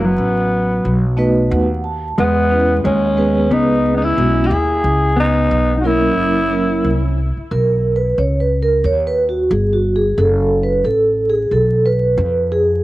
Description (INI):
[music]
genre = hip hop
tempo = 90 BPM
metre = 4/4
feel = swing 57% on 16ths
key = B major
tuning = A4 = 439 Hz
[part]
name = growling tenor saxophone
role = melody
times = 0.0-7.2 s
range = B3 to G#4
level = -18 LUFS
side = left 1 dB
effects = cassette tape, plate reverb, tape echo
[part]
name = mellow electric guitar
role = second line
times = 0.0-7.2 s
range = F#3 to E4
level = -19 LUFS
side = right 1 dB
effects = plate reverb
[part]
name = upright bass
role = bass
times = 0.0-12.8 s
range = F#1 to F2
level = -18 LUFS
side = equal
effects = none
[part]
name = vibraphone with soft mallets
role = accompaniment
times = 1.2-12.8 s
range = F#3 to A5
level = -16 LUFS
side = right 1 dB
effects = plate reverb
[sound]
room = light reverb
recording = home recording on cassette, vinyl crackle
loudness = -13 LUFS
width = side -17 dB against mid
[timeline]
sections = 0.0-7.5 A section; 7.5-12.8 B section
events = vibraphone fill 0.8-2.2; vibraphone solo 7.5-12.8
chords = 0.0 F#m; 0.8 B7; 2.2 E6; 4.8 C#m7; 6.2 F#7; 7.5 B; 10.2 F#m; 11.5 Fdim/Cb